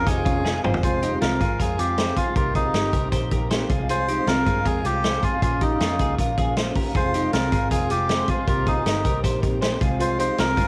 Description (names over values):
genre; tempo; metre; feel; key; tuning
jangly indie pop; 157 BPM; 4/4; straight; F minor; A4 = 442 Hz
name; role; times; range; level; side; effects
melodica; melody; 0.0-10.7 s; Eb4 to C5; -28 LUFS; equal; cassette tape
fingerpicked steel-string acoustic guitar; accompaniment; 0.0-10.7 s; F2 to G4; -34 LUFS; equal; none
overdriven combo organ; accompaniment; 0.0-10.7 s; Ab3 to Bb4; -35 LUFS; equal; none
twelve-string electric guitar; arpeggios; 0.0-10.7 s; C4 to C5; -30 LUFS; equal; none
vintage muted picked electric bass; bass; 0.0-10.7 s; F1 to G2; -30 LUFS; equal; none
vintage drum kit; drums; 0.1-10.7 s; hi-hat, kick drum, snare drum, toms; -27 LUFS; equal; none
room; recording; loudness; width
moderate spring reverb, RT60 1.5 s; home recording on cassette; -22 LUFS; mono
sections
0.8-10.7 A section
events
drum fill 0.5-0.8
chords
0.1 Fm7; 0.8 Fm; 2.4 Cm7; 3.7 Fm/C; 5.4 Bbm; 7.0 Fm; 8.5 Cm7; 9.8 Fm/C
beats
0.07 0.45 | 0.83 1.21 1.59 1.98 | 2.36 2.74 3.12 3.51 | 3.89 4.27 4.66 5.04 | 5.42 5.80 6.18 6.57 | 6.95 7.33 7.71 8.10 | 8.48 8.86 9.24 9.62 | 10.00 10.38